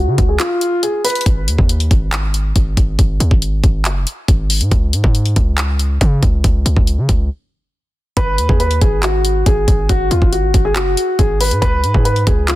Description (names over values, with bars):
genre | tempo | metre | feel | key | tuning
hip hop, trap | 139 BPM | 4/4 | half-time | G# dorian | A4 = 440 Hz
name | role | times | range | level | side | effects
dark grand piano | melody | 0.0-1.2, 8.2-12.6 s | E#4 to B4 | -17 LUFS | equal | low-pass filter, digital delay
hard-hitting 808-style bass | bass | 0.0-12.6 s | F#1 to C#3 | -16 LUFS | equal | none
trap drum kit | drums | 0.2-12.6 s | handclaps, hi-hat, kick drum | -16 LUFS | equal | none
room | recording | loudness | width
digital ambience | dense, heavily limited modern master | -12 LUFS | side -16 dB against mid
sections
0.0-12.6 A section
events
filter sweep on grand piano 0.0-1.3; break 0.4-1.3, 7.3-8.2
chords
0.0 C#; 1.3 G#5; 4.7 C#5; 8.2 G#5; 11.6 C#7(no3)